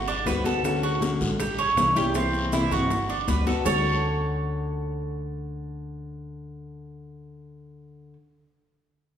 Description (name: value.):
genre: latin, Cuban son and guajira.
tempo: 159 BPM.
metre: 4/4.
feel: straight.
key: D major.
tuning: A4 = 441 Hz.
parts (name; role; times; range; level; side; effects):
Cuban tres; arpeggios; 0.0-8.1 s; C4 to C#5; -26 LUFS; right 3 dB; none.
upright bass; bass; 0.0-8.1 s; G1 to D2; -31 LUFS; equal; none.
bongos; percussion; 0.1-3.7 s; none; -36 LUFS; left 3 dB; none.
congas; percussion; 0.1-3.7 s; none; -33 LUFS; left 2 dB; none.
maracas; percussion; 0.1-3.7 s; none; -43 LUFS; right 5 dB; none.
nylon-string guitar; accompaniment; 0.3-8.2 s; C3 to F#4; -30 LUFS; left 2 dB; none.
guiro; percussion; 0.3-3.7 s; none; -39 LUFS; left 3 dB; none.
room: wet recital hall reverb, RT60 1.6 s.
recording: recorded in a church or concert hall.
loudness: -22 LUFS.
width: side -9 dB against mid.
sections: 0.0-3.7 A section; 3.7-6.7 B section.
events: drum fill 2.5-3.7.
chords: 0.0 Gmaj7; 0.6 Dmaj7; 1.4 A7; 2.2 C7; 2.9 Gmaj7; 3.7 Dmaj7.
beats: 0.27 | 0.64 1.02 1.40 1.77 | 2.15 2.53 2.90 3.28 | 3.66 4.03 4.41 4.79 | 5.16 5.54 5.92 6.29.